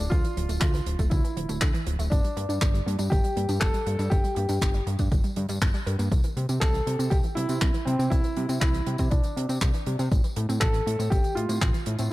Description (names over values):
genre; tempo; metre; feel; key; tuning
italo disco; 120 BPM; 4/4; straight; unclear; A4 = 439 Hz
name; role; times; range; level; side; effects
dark grand piano; melody; 0.0-12.1 s; C4 to A4; -31 LUFS; equal; ping-pong delay
wide unison pluck; arpeggios; 0.0-12.0 s; C3 to Bb4; -35 LUFS; right 2 dB; cassette tape, ping-pong delay
fat analog bass; bass; 0.0-12.1 s; D1 to C3; -28 LUFS; equal; none
electronic kick drum; drums; 0.1-11.7 s; none; -24 LUFS; equal; none
tight funk drum kit; drums; 0.1-12.1 s; handclaps, hi-hat, tambourine; -34 LUFS; equal; none
room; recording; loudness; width
light reverb, small room ambience; dark, warm production; -23 LUFS; side -17 dB against mid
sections
0.0-12.1 A section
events
none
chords
0.0 Dmadd9; 2.1 Gm; 6.1 C; 10.1 Am